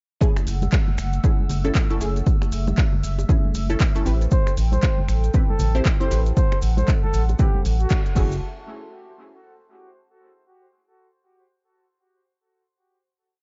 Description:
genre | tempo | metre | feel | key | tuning
deep house | 117 BPM | 4/4 | swing 59% on 16ths | F# minor | A4 = 441 Hz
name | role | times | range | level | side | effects
hollow soft pad | sustained chords | 0.2-8.4 s | A3 to E6 | -38 LUFS | equal | chorus, sidechain pumping
filtered dub chord stab | stabs | 0.2-8.4 s | A3 to C5 | -32 LUFS | equal | phaser, sidechain pumping, analog delay
electronic kick drum | drums | 0.2-8.3 s | none | -22 LUFS | equal | none
punchy analog drum machine | drums | 0.2-8.3 s | crash cymbal, finger snaps, handclaps, hi-hat | -35 LUFS | equal | none
maracas | percussion | 0.2-8.4 s | none | -44 LUFS | equal | none
bongos and congas | percussion | 0.4-7.6 s | none | -33 LUFS | equal | none
round analog bass | bass | 0.5-8.4 s | F#1 to A1 | -24 LUFS | equal | tube saturation, sidechain pumping
trumpet with bucket mute | melody | 4.3-8.4 s | F#4 to C5 | -33 LUFS | equal | tape echo
room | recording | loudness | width
little or no reverb | dark, warm production, nothing above 7.6 kHz | -21 LUFS | mono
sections
0.2-8.4 drop; 8.4-10.5 final hit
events
drop 0.2-8.4; band accent 7.9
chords
0.2 F#m7; 4.1 Am7; 8.2 F#m7; 8.4 N.C.

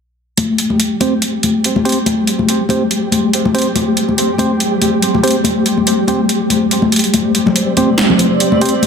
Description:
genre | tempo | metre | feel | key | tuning
deep dubstep | 142 BPM | 4/4 | swing 55% on 16ths, half-time | unclear | A4 = 441 Hz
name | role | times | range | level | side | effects
deep house drum kit | drums | 0.4-8.9 s | hi-hat, snare drum | -18 LUFS | right 2 dB | overdrive
congas | percussion | 0.4-8.9 s | none | -15 LUFS | left 4 dB | dub echo
flickering grainy texture | texture | 0.6-8.9 s | G3 to C5 | -20 LUFS | right 2 dB | built-in reverb
percussive organ stab | stabs | 1.0-8.7 s | C4 to C5 | -19 LUFS | right 3 dB | chorus, dub echo
granular cloud pad | sustained chords | 7.5-8.9 s | C4 to D5 | -18 LUFS | right 5 dB | built-in reverb, vintage 12-bit sampler grit
room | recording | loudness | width
moderate echo chamber reverb, RT60 1.4 s | dense, heavily limited modern master | -12 LUFS | side -6 dB against mid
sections
0.4-8.9 A section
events
filter sweep on synth stab 0.4-8.9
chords
0.4 C5

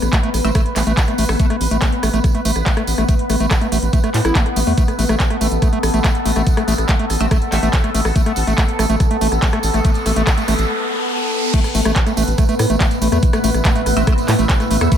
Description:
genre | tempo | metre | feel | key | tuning
psychedelic trance | 142 BPM | 4/4 | straight | unclear | A4 = 441 Hz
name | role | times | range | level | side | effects
bubbling stepped-filter texture | sustained chords | 0.0-15.0 s | B3 to B4 | -22 LUFS | left 1 dB | chorus, built-in reverb, vintage 12-bit sampler grit, sidechain pumping
round analog bass | bass | 0.0-14.9 s | A1 to A2 | -18 LUFS | equal | none
drum and bass drum kit | drums | 0.0-15.0 s | crash cymbal, handclaps, hi-hat, rim click | -23 LUFS | equal | none
tambourine | percussion | 0.0-15.0 s | none | -30 LUFS | right 6 dB | none
overdriven acid bass | riff | 0.1-15.0 s | A3 to E4 | -22 LUFS | moving between left 5 dB and right 4 dB | auto-pan, sidechain pumping, digital delay
electronic kick drum | drums | 0.1-15.0 s | none | -16 LUFS | equal | none
metallic wobble bass | second line | 0.4-1.5, 7.2-7.8, 14.0-15.0 s | A3 to C4 | -29 LUFS | left 2 dB | analog chorus, sidechain pumping, high-pass filter, digital delay
riser | sound effects | 9.1-11.5 s | none | -26 LUFS | equal | none
deep dark ambient pad | texture | 12.4-15.0 s | A3 to E6 | -24 LUFS | equal | chorus, built-in reverb, sidechain pumping
room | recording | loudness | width
light reverb | none | -14 LUFS | side -9 dB against mid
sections
0.0-11.5 A section; 11.5-15.0 B section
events
riser 9.1-11.5; break 10.7-11.5; drop 11.5-15.0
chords
0.0 A5

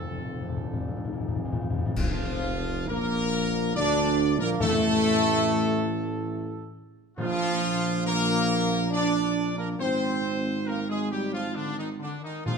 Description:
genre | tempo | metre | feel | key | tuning
classical, ceremonial fanfare | 69 BPM | 3/4 | uneven beats | Bb major | A4 = 439 Hz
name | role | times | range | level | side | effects
bright trumpet section | melody | 0.0-12.6 s | D4 to D5 | -31 LUFS | equal | none
bright trombone section | sustained chords | 0.0-12.6 s | C3 to D4 | -32 LUFS | right 3 dB | none
mellow tuba | bass | 0.0-12.6 s | F1 to D2 | -29 LUFS | right 4 dB | none
timpani | percussion | 0.0-12.6 s | F2 to Bb2 | -32 LUFS | left 3 dB | none
mellow French horn section | sustained chords | 0.1-12.6 s | D3 to F4 | -30 LUFS | left 4 dB | none
clash cymbals and concert bass drum | percussion | 2.0-3.7 s | none | -34 LUFS | left 1 dB | none
room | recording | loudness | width
wet recital hall reverb, RT60 1.5 s | minimal, uncompressed stereo recording | -24 LUFS | side -5 dB against mid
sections
0.0-2.0 A section; 2.0-12.6 B section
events
timpani fill 0.0-2.0; band accent 2.0-2.9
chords
0.0 F; 2.0 Bb/F; 4.6 N.C.; 7.2 Bb5; 9.8 Ab

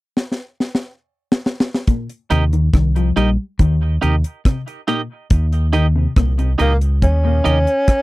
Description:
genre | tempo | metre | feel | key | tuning
roots reggae | 70 BPM | 4/4 | straight | unclear | A4 = 438 Hz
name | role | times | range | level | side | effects
deep reggae drum kit | drums | 0.2-8.0 s | hi-hat, kick drum, rim click, snare drum | -16 LUFS | equal | none
electric guitar at the edge of break-up | arpeggios | 1.9-7.6 s | G2 to G3 | -22 LUFS | left 4 dB | none
clean electric guitar | accompaniment | 2.3-7.6 s | Eb4 to Eb5 | -23 LUFS | right 5 dB | dub echo
deep dub fingered electric bass | bass | 2.3-7.7 s | Bb1 to Eb2 | -16 LUFS | equal | none
breathy tenor saxophone | melody | 6.6-8.0 s | Bb3 to Db4 | -18 LUFS | equal | dub echo
room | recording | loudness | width
little or no reverb | dry, close 1970s-style studio recording | -15 LUFS | side -20 dB against mid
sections
0.0-1.9 A section; 1.9-5.3 B section; 5.3-8.0 C section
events
drum fill 0.2-1.9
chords
0.0 N.C.; 1.9 Eb

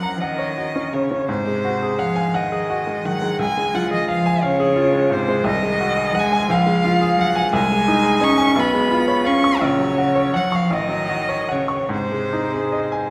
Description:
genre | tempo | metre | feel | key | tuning
classical, slow romantic movement for piano trio | 48-59 BPM (dotted quarters) | 6/8 | rubato | Db major | A4 = 438 Hz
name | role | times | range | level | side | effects
rich violin | melody | 0.0-13.1 s | C5 to Db6 | -24 LUFS | equal | none
rich cello | second line | 0.0-13.1 s | C3 to Db4 | -25 LUFS | equal | none
bright baby grand piano | accompaniment | 0.0-13.1 s | A1 to Db6 | -23 LUFS | equal | none
room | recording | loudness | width
wet recital hall reverb, RT60 1.6 s | none | -19 LUFS | mono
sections
0.0-13.1 A section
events
none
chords
0.0 Gb; 1.3 Ab7; 3.4 Db; 5.5 Ab7/C; 6.5 Db; 7.5 Ab/C; 8.6 Db7/Cb; 9.6 Gb/Bb; 10.7 Gbm/A; 11.9 Ab

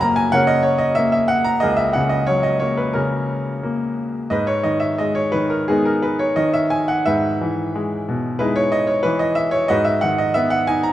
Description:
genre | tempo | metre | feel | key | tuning
classical, lyrical solo piano | 89 BPM | 4/4 | uneven beats, rubato | unclear | A4 = 440 Hz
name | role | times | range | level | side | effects
bright grand piano | solo | 0.0-10.9 s | C#2 to B5 | -17 LUFS | equal | none
room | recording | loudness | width
moderate recital hall reverb, RT60 1.5 s | dark, warm production | -17 LUFS | side -13 dB against mid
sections
0.0-10.9 A section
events
none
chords
0.0 F#add9; 4.3 Emaj7/G#; 9.7 G#m7

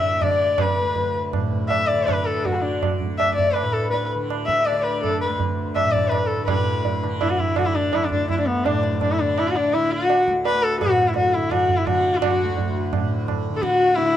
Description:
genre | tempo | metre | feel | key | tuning
indian classical, Hindustani | 166 BPM | 4/4 | straight | D raga bhupali | A4 = 439 Hz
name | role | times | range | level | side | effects
rich sarangi | melody | 0.0-14.2 s | B3 to E5 | -20 LUFS | left 2 dB | none
dark sarangi | second line | 0.0-6.6, 12.3-14.2 s | E4 to E5 | -30 LUFS | left 5 dB | slapback echo
tanpura | drone | 0.0-14.2 s | D2 to D3 | -28 LUFS | equal | stereo widening
tabla | percussion | 0.0-14.1 s | none | -25 LUFS | right 6 dB | none
room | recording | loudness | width
little or no reverb | dry, close 1970s-style studio recording | -19 LUFS | side -11 dB against mid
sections
0.0-6.5 A section; 6.5-14.2 B section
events
speeding up 0.0-14.2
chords
none

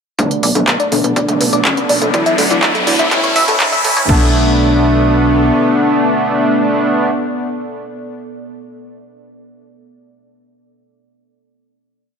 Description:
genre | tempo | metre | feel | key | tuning
melodic techno | 123 BPM | 4/4 | straight | B minor | A4 = 438 Hz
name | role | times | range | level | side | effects
soft octave-layered synth lead | melody | 0.2-7.1 s | C#4 to E4 | -19 LUFS | left 2 dB | chorus, sidechain pumping, ping-pong delay
deep dark ambient pad | sustained chords | 0.9-7.1 s | B3 to E5 | -22 LUFS | left 1 dB | chorus, built-in reverb, sidechain pumping
tight sequenced synth | arpeggios | 0.2-4.3 s | A4 to E5 | -18 LUFS | left 1 dB | chorus, sidechain pumping, ping-pong delay
analog synth brass | stabs | 0.2-7.1 s | F#3 to E4 | -18 LUFS | right 3 dB | chorus, cassette tape, sidechain pumping, ping-pong delay
plucky analog bass | bass | 0.2-5.5 s | F#1 to E2 | -18 LUFS | equal | sidechain pumping, high-pass filter
bowed-like drone | drone | 1.5-7.1 s | B2 to B3 | -26 LUFS | right 1 dB | none
electronic kick drum | drums | 0.2-4.2 s | none | -18 LUFS | left 1 dB | high-pass filter on kick, high-pass filter on room
techno drum kit | drums | 0.2-4.2 s | crash cymbal, handclaps, hi-hat, toms | -18 LUFS | equal | high-pass filter on hats, high-pass filter on toms, high-pass filter on snare, high-pass filter on cymbals, high-pass filter on room
riser | sound effects | 1.1-4.1 s | none | -20 LUFS | left 2 dB | none
room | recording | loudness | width
moderate lush hall reverb, RT60 1.8 s | high-pass filter | -11 LUFS | side -6 dB against mid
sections
0.2-4.1 build; 4.1-8.0 final chord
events
build-up 0.2-4.1; filter sweep on synth arpeggio sound 0.2-4.1; filter sweep on soft synth lead 0.2-4.1; filter sweep on analog polysynth 0.2-4.1; riser 1.1-4.1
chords
0.2 Bm7; 2.1 Dadd9; 3.1 A; 4.1 Bm7

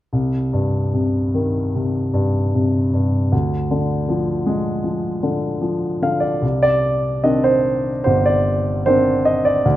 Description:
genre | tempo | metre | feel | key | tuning
classical, lyrical solo piano | 76 BPM | 4/4 | uneven beats, rubato | C minor | A4 = 440 Hz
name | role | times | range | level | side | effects
warm grand piano | solo | 0.1-9.8 s | G1 to F5 | -16 LUFS | equal | none
room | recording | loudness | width
light reverb | none | -16 LUFS | side -14 dB against mid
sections
0.1-6.4 A section; 6.4-9.8 B section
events
none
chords
0.1 Cm; 3.3 Ddim; 6.4 Cmadd9

